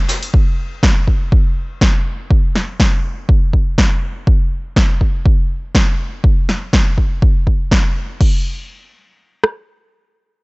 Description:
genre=house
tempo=122 BPM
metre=4/4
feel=swing 54% on 16ths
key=none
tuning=none
part: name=punchy analog drum machine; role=drums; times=0.1-8.3 s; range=crash cymbal, hi-hat, snare drum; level=-19 LUFS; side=equal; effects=overdrive
part: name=deep house drum kit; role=drums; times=0.3-9.6 s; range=kick drum, rim click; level=-13 LUFS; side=equal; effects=overdrive
room=small room ambience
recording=nothing above 8.0 kHz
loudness=-13 LUFS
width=side -29 dB against mid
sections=0.0-8.2 A section; 8.2-10.4 B section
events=none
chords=none

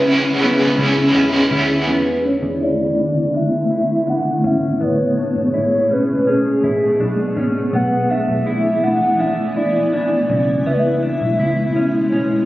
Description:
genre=dream pop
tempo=82 BPM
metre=4/4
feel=straight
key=unclear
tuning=A4 = 440 Hz
part: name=warbly nostalgic lead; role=melody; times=0.0-12.1 s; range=G#4 to F#5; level=-20 LUFS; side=equal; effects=chorus, low-pass filter, digital delay
part: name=cranked stack guitar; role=accompaniment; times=0.0-1.9 s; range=C#3 to E4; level=-18 LUFS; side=right 1 dB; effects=overdrive, tremolo, lush chorus
part: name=granular cloud pad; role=sustained chords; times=0.0-12.5 s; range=B2 to B5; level=-19 LUFS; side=equal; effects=built-in reverb, low-pass filter
part: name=mellow electric guitar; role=arpeggios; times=0.0-12.5 s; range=C#3 to E4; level=-21 LUFS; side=left 1 dB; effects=wide subtle chorus, low-pass filter, digital delay
part: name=vintage muted picked electric bass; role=bass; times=0.0-12.5 s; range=G#1 to E2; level=-25 LUFS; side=equal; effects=none
room=wet concert hall reverb, RT60 1.8 s, digital ambience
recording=recorded on a phone in the room, studio reverb, compression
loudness=-15 LUFS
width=side -16 dB against mid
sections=0.0-1.9 A section; 1.9-12.5 B section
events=filter sweep 1.9-12.5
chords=0.0 C#m7; 1.9 Amaj9; 7.7 Bm11; 10.7 C#m7

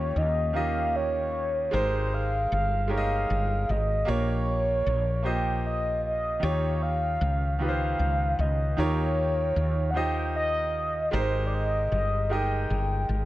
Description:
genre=slow six-eight R&B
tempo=51 BPM (dotted quarters)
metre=6/8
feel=straight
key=unclear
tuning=A4 = 440 Hz
part: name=mellow horn-like synth lead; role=melody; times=0.0-13.1 s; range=C5 to G5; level=-28 LUFS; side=equal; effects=chorus
part: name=bright grand piano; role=accompaniment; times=0.0-13.3 s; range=Eb3 to Eb5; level=-31 LUFS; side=right 2 dB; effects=none
part: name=woody fretless electric bass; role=bass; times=0.0-13.3 s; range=G1 to Eb2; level=-28 LUFS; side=equal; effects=ensemble chorus
room=light reverb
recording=none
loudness=-24 LUFS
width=side -16 dB against mid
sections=0.0-13.3 A section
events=none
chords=0.0 Eb9; 1.7 Abmaj9; 4.1 Bbm69; 6.4 Eb9; 8.8 Eb13; 11.1 Abmaj9

